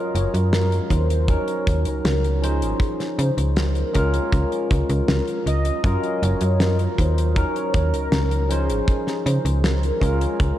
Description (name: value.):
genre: vaporwave.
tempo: 79 BPM.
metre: 4/4.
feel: straight.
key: unclear.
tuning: A4 = 440 Hz.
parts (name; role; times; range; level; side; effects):
warm velvety synth lead; melody; 0.0-10.6 s; Ab4 to Eb5; -28 LUFS; equal; chorus, diffuse ambient delay.
barky tine electric piano; accompaniment; 0.0-10.6 s; F3 to C5; -26 LUFS; equal; lush chorus, diffuse ambient delay.
slap-like FM bass; bass; 0.1-10.5 s; Gb1 to Db3; -21 LUFS; equal; none.
damped 70s drum kit; drums; 0.2-10.6 s; hi-hat, snare drum; -29 LUFS; left 1 dB; studio reverb.
kick drum; drums; 0.9-10.6 s; none; -20 LUFS; equal; studio reverb.
room: moderate cathedral reverb, RT60 5.1 s.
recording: dreamy mix soaked in reverb, cassette tape.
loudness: -18 LUFS.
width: side -12 dB against mid.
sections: 0.0-10.6 A section.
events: none.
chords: 0.0 Gbmaj7; 1.3 Ebm7; 2.4 Dbmaj9; 3.9 Bbm7/Db; 5.8 Gbmaj7; 7.4 Ebm7; 8.5 Dbmaj9; 10.0 Bbm7/Db.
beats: 0.53 1.29 2.05 | 2.81 3.57 4.33 5.08 | 5.84 6.60 7.36 8.12 | 8.88 9.64 10.40.